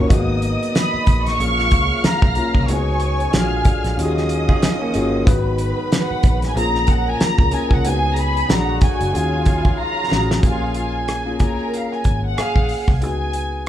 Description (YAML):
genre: lush 1970s-style soul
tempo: 93 BPM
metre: 4/4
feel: swing 58% on 16ths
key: unclear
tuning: A4 = 441 Hz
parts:
  - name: warm studio string section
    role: second line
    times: 0.0-12.9 s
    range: E#4 to E#6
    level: -27 LUFS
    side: right 1 dB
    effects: none
  - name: warm concert grand piano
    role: accompaniment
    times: 0.0-13.7 s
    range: A#3 to B4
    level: -25 LUFS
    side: left 3 dB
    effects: tube saturation
  - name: dark French horn section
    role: sustained chords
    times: 0.0-10.4 s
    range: C#3 to E#5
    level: -30 LUFS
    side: equal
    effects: none
  - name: electric guitar through a small old amp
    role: riff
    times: 0.0-0.1, 4.5-5.2 s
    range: A#3 to G#4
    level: -24 LUFS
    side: right 2 dB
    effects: none
  - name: vintage muted fingered electric bass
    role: bass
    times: 0.0-13.7 s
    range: F#1 to D#2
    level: -23 LUFS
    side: equal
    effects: none
  - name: damped 70s drum kit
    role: drums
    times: 0.1-13.7 s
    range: hi-hat, kick drum, rim click, snare drum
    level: -18 LUFS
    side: equal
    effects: none
  - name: dark studio violin section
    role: melody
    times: 0.8-13.6 s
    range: E#5 to C#6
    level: -23 LUFS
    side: equal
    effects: none
room: moderate large studio reverb, RT60 0.9 s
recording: band playing live in one room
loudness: -16 LUFS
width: side -11 dB against mid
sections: 0.0-10.4 A section; 10.4-13.7 B section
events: drum fill 9.8-10.4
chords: 0.1 G#m9; 1.4 A#m7; 2.7 C#7sus4; 3.3 A#7b13; 4.0 D#m11; 5.3 G#m9; 6.6 A#m7; 7.8 C#7sus4; 8.5 A#7b13; 9.1 D#m11; 10.4 A#m7; 13.0 C#7sus4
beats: | 0.11 0.75 1.40 2.04 | 2.69 3.33 3.98 4.62 | 5.27 5.91 6.56 7.20 | 7.85 8.49 9.14 9.79 | 10.43 11.08 11.72 12.37 | 13.02 13.66